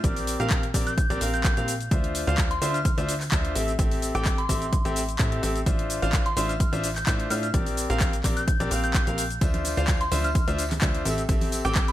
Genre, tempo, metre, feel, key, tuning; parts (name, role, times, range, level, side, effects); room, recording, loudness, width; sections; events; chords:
piano house; 128 BPM; 4/4; swing 54% on 16ths; D minor; A4 = 437 Hz
bright grand piano; riff; 0.0-11.9 s; C4 to G5; -29 LUFS; left 1 dB; sidechain pumping
plucky analog bass; bass; 0.0-11.9 s; A1 to A2; -29 LUFS; equal; sidechain pumping
electronic kick drum; drums; 0.0-11.9 s; -24 LUFS; equal; overdrive
house drum kit; drums; 0.0-11.9 s; handclaps, hi-hat, shaker; -31 LUFS; left 1 dB; overdrive
soft synth bell; melody; 0.9-11.9 s; C6 to G6; -32 LUFS; equal; chorus, digital delay
tambourine and congas; percussion; 9.4-11.9 s; -37 LUFS; right 2 dB
digital ambience; -22 LUFS; side -13 dB against mid
0.0-11.9 A section
0.0 Bb69; 1.9 Dm9; 3.6 Am7; 5.7 Dm9/A; 7.5 Bb69; 9.4 Dm9; 11.1 Am7